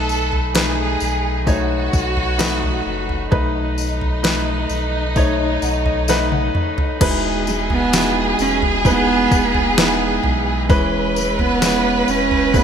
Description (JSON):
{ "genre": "pop ballad", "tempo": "65 BPM", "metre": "4/4", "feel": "straight", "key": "E major", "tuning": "A4 = 439 Hz", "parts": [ { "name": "warm studio violin section", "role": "second line", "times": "0.0-12.6 s", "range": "D#4 to B4", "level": "-22 LUFS", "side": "right 2 dB", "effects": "none" }, { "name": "clear baby grand piano", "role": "accompaniment", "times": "0.0-12.6 s", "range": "B2 to F#5", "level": "-21 LUFS", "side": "left 1 dB", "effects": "none" }, { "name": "warm sub bass", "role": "bass", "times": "0.0-12.6 s", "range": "E1 to B1", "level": "-24 LUFS", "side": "equal", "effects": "none" }, { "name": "tambourine", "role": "percussion", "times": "0.1-12.6 s", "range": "none", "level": "-30 LUFS", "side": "left 11 dB", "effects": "none" }, { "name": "smooth R&B drum kit", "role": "drums", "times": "0.3-12.6 s", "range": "crash cymbal, kick drum, snare drum, toms", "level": "-21 LUFS", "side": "equal", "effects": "gated reverb" }, { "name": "dark cello", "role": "melody", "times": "7.5-12.6 s", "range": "G#3 to C#4", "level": "-20 LUFS", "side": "right 3 dB", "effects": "none" } ], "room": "moderate plate reverb, RT60 3.8 s", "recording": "bright 1980s-style digital production", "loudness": "-15 LUFS", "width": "side -8 dB against mid", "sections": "0.0-7.0 A section; 7.0-12.6 B section", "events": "grand piano fill 5.2-7.0; drum fill 6.1-7.0", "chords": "0.0 B7; 7.0 Emaj7; 10.7 C#m7/E" }